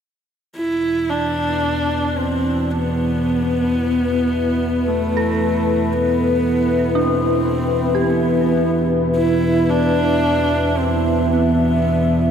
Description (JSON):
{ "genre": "dark ambient drone", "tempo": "56 BPM", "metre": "4/4", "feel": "straight", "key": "E minor", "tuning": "A4 = 442 Hz", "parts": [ { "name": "dark horsehead fiddle", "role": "melody", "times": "0.6-12.3 s", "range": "A3 to E4", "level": "-20 LUFS", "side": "right 1 dB", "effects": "tape echo" }, { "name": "dark analog pad", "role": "sustained chords", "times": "1.5-12.3 s", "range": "E4 to E5", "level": "-22 LUFS", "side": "left 2 dB", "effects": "chorus" }, { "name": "analog drone", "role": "drone", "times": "0.8-12.3 s", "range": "E2 to B2", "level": "-21 LUFS", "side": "equal", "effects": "chorus" }, { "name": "dark detuned synth bell", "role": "arpeggios", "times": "5.2-12.3 s", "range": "D4 to A4", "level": "-27 LUFS", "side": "right 2 dB", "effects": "chorus, phaser, tape echo" } ], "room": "wet cathedral reverb, RT60 5.4 s", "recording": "none", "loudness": "-16 LUFS", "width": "side -8 dB against mid", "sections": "0.6-12.3 A section", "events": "none", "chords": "0.6 Em" }